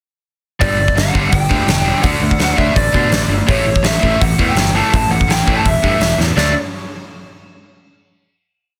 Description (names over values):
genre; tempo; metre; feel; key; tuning
punk rock; 166 BPM; 4/4; straight; D major; A4 = 440 Hz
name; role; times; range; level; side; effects
lead guitar through a small cranked amp; melody; 0.6-6.5 s; C#5 to A5; -21 LUFS; equal; overdrive
raw garage guitar; riff; 0.6-6.5 s; G2 to D4; -24 LUFS; equal; overdrive
sludgy distorted guitar; riff; 0.6-6.5 s; G2 to D4; -22 LUFS; equal; overdrive
modern bright picked electric bass; bass; 0.6-6.5 s; E1 to B2; -22 LUFS; equal; none
big rock drum kit; drums; 0.6-6.5 s; hi-hat, kick drum, snare drum; -19 LUFS; equal; none
room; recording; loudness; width
little or no reverb; dense, heavily limited modern master; -14 LUFS; mono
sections
0.6-6.4 verse; 6.4-7.8 final chord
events
drum fill 6.2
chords
0.6 G5; 2.0 D; 3.5 A5; 6.4 D5